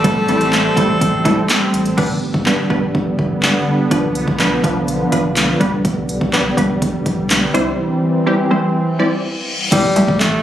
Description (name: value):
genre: dance-pop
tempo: 124 BPM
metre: 4/4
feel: straight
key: unclear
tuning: A4 = 436 Hz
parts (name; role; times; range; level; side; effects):
- breathy alto saxophone; melody; 0.0-1.7, 9.7-10.4 s; G3 to A4; -19 LUFS; equal; dub echo
- wide unison pluck; accompaniment; 0.0-10.2 s; C3 to D5; -19 LUFS; right 1 dB; analog chorus
- sweeping resonant pad; sustained chords; 0.0-9.7 s; D3 to C4; -19 LUFS; equal; chorus, sidechain pumping
- sub bass with octave; bass; 0.0-10.4 s; G1 to C2; -25 LUFS; equal; sidechain pumping
- deep house drum kit; drums; 0.0-10.3 s; crash cymbal, handclaps, hi-hat, kick drum, snare drum; -18 LUFS; equal; none
- reverse cymbal; sound effects; 9.0-9.7 s; none; -24 LUFS; left 3 dB; none
room: moderate lush hall reverb, RT60 1.7 s, digital ambience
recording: recorded on a phone in the room, club reverb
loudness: -14 LUFS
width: side -11 dB against mid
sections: 0.0-2.0 A section; 2.0-9.7 B section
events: reverse cymbal 9.0-9.7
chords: 0.0 Am7; 2.0 G; 3.9 Bdim; 5.6 G/B; 7.5 C; 9.7 Am7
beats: | 0.04 0.53 1.01 1.49 | 1.98 2.46 2.94 3.43 | 3.91 4.40 4.88 5.37 | 5.85 6.33 6.82 7.30 | 7.78 8.27 8.75 9.24 | 9.72 10.20